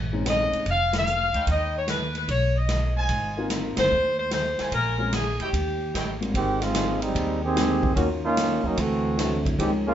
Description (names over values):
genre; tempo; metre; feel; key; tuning
jazz, big band swing; 148 BPM; 4/4; swing 67% on 8ths; Ab major; A4 = 438 Hz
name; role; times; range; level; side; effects
upright bass; bass; 0.0-9.9 s; F1 to Fb2; -28 LUFS; equal; none
warm grand piano; accompaniment; 0.1-0.6, 3.4-9.9 s; Ab2 to G4; -30 LUFS; left 3 dB; none
bright saxophone section; melody; 0.3-6.2 s; G4 to F5; -24 LUFS; left 1 dB; none
swinging big-band drum kit; drums; 0.3-9.7 s; hi-hat, kick drum, ride cymbal, snare drum; -30 LUFS; right 1 dB; none
clear trumpet section; stabs; 1.3-6.1 s; Eb4 to Ab5; -32 LUFS; right 2 dB; none
bright trombone section; second line; 6.3-9.9 s; Eb3 to Ab4; -24 LUFS; right 2 dB; none
room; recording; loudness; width
moderate studio ambience, RT60 0.5 s; band playing live in one room, nothing above 7.6 kHz; -22 LUFS; side -10 dB against mid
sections
0.0-6.3 A section; 6.3-9.9 B section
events
band accent 0.9, 3.7; trombone section solo 6.3-9.9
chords
0.0 Bbm11; 1.5 Ebaug7; 3.1 Ab6; 4.7 Bbm7; 5.5 Eb7b9; 6.3 Abmaj7; 8.0 Ebm7; 8.8 D9